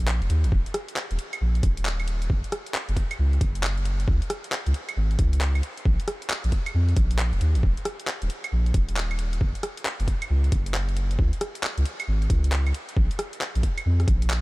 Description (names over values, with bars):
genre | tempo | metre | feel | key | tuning
UK garage, two-step garage | 135 BPM | 4/4 | swing 64% on 16ths | Eb minor | A4 = 440 Hz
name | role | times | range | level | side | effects
soft dub sub bass | bass | 0.0-14.4 s | Eb1 to F2 | -22 LUFS | equal | none
garage drum kit | drums | 0.0-14.4 s | claves, handclaps, hi-hat, rim click | -31 LUFS | equal | none
electronic kick drum | drums | 0.5-14.2 s | none | -24 LUFS | equal | overdrive
room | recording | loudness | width
little or no reverb | none | -22 LUFS | side -21 dB against mid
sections
0.0-14.4 A section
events
none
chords
none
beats
0.08 | 0.52 0.97 1.41 1.85 | 2.30 2.74 3.19 3.63 | 4.08 4.52 4.97 5.41 | 5.85 6.30 6.74 7.19 | 7.63 8.08 8.52 8.97 | 9.41 9.85 10.30 10.74 | 11.19 11.63 12.08 12.52 | 12.97 13.41 13.85 14.30